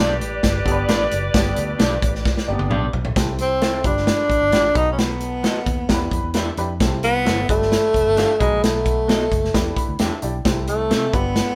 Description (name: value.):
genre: uptempo 1960s-style soul.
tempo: 132 BPM.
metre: 4/4.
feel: straight.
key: C major.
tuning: A4 = 440 Hz.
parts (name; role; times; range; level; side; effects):
mellow saxophone section; second line; 0.0-2.9 s; G4 to D5; -27 LUFS; equal; none.
warm upright piano; accompaniment; 0.0-11.6 s; G2 to B5; -31 LUFS; equal; none.
electric guitar through a small old amp; stabs; 0.0-11.1 s; B3 to F5; -29 LUFS; equal; none.
vintage muted fingered electric bass; bass; 0.0-11.4 s; F1 to C3; -28 LUFS; equal; none.
natural country drum kit; drums; 0.2-11.5 s; hi-hat, kick drum, snare drum, toms; -23 LUFS; equal; none.
breathy tenor saxophone; melody; 3.4-11.6 s; Ab3 to D#4; -22 LUFS; equal; none.
room: moderate studio reverb, RT60 0.8 s.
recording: band playing live in one room.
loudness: -19 LUFS.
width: mono.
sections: 0.0-3.2 A section; 3.2-11.6 B section.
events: drum fill 2.3-3.2; upright piano fill 9.5-10.5.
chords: 0.0 G; 3.2 C6; 3.8 G7; 4.8 B7; 5.9 Em7; 6.8 C6; 7.5 G7; 8.4 B7; 9.5 Em7; 10.5 C6.